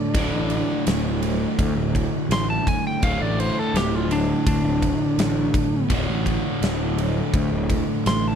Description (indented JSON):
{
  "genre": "blues rock power trio and southern rock",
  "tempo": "83 BPM",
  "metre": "4/4",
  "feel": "straight",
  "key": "unclear",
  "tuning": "A4 = 440 Hz",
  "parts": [
    { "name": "lightly driven lead guitar", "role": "melody", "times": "0.0-8.4 s", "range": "D4 to C6", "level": "-25 LUFS", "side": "equal", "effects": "none" },
    { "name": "crunchy overdriven guitar", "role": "riff", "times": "0.0-8.4 s", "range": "D2 to D3", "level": "-24 LUFS", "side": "equal", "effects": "none" },
    { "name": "fuzz fingered electric bass", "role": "bass", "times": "0.1-8.4 s", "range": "D1 to D2", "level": "-26 LUFS", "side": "equal", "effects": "overdrive" },
    { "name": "huge arena drum kit", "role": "drums", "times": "0.1-8.2 s", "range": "kick drum, ride cymbal, snare drum", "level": "-25 LUFS", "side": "equal", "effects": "none" }
  ],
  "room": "little or no reverb",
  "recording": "none",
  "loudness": "-20 LUFS",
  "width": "side -8 dB against mid",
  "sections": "0.0-8.4 A section",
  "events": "lead electric guitar solo 0.0-8.4",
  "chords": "0.0 D5",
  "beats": "| 0.15 0.87 1.59 2.31 | 3.03 3.75 4.47 5.19 | 5.91 6.63 7.35 8.07"
}